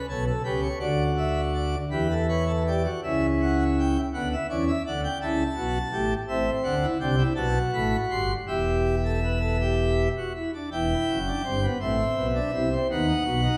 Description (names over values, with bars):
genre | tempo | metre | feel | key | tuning
classical, baroque-style 3-part fugue for pipe organ | 55 BPM (dotted quarters) | 6/8 | straight | E minor from 6.3 s | A4 = 439 Hz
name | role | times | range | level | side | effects
pipe organ, plenum | solo | 0.0-13.6 s | E1 to C6 | -26 LUFS | equal | none
room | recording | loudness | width
wet scoring stage reverb, RT60 1.6 s | heard from further back in the room | -26 LUFS | mono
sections
0.0-1.9 A section; 1.9-10.7 B section; 10.7-13.6 C section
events
none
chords
0.0 A7; 0.8 D; 1.9 Em7; 3.0 C#dim; 4.1 D; 5.2 A; 6.3 Am; 7.4 B5; 8.5 Em; 11.8 Am; 12.9 B